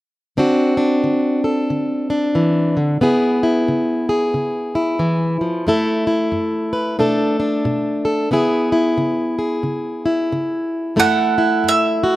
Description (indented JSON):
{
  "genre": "acoustic country blues, solo or duo",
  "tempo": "90 BPM",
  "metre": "4/4",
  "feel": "swing 61% on 8ths",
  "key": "F# minor",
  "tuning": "A4 = 441 Hz",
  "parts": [
    { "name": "fingerpicked plugged-in steel-string acoustic guitar", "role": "accompaniment", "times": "0.4-12.2 s", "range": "F#2 to B4", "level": "-16 LUFS", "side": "equal", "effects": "none" },
    { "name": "bowl-back mandolin", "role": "melody", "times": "11.0-12.2 s", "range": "E5 to F#5", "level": "-16 LUFS", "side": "right 5 dB", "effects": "slapback echo" }
  ],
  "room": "little or no reverb",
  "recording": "recorded outdoors, with no room sound",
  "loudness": "-16 LUFS",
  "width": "side -16 dB against mid",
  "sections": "0.4-11.0 A section; 11.0-12.2 B section",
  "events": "none",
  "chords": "0.4 D7; 3.0 C#m7; 5.7 F#m7; 7.0 Bm7; 8.3 C#m7; 11.0 F#m7"
}